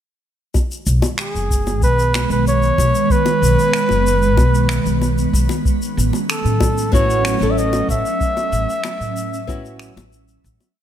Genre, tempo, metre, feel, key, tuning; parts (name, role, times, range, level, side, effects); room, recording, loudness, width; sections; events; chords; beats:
sunset chillout; 94 BPM; 4/4; straight; B mixolydian; A4 = 438 Hz
electronic kick drum; drums; 0.5-10.6 s; -18 LUFS; equal
bongos; percussion; 0.5-10.7 s; -26 LUFS; left 5 dB
ethereal airy pad; sustained chords; 1.1-10.7 s; D#3 to C#4; -22 LUFS; right 2 dB; ensemble chorus, built-in reverb
shaker and finger snaps; drums; 0.6-10.7 s; -26 LUFS; left 1 dB
upright bass; bass; 0.9-10.6 s; F#1 to A2; -19 LUFS; equal
warm flugelhorn; melody; 1.2-10.1 s; G#4 to E5; -20 LUFS; equal; tape echo, shimmer reverb
nylon-string guitar; accompaniment; 6.9-9.9 s; B3 to A4; -25 LUFS; moving between left 6 dB and right 2 dB; auto-pan, shimmer reverb
light reverb, small room ambience; -15 LUFS; side -10 dB against mid
0.5-10.8 groove
fade-out 7.4-10.8
0.5 B6; 5.7 A69
| 0.55 1.19 1.82 2.46 | 3.10 3.74 4.38 5.02 | 5.66 6.29 6.93 7.57 | 8.21 8.85 9.48 10.12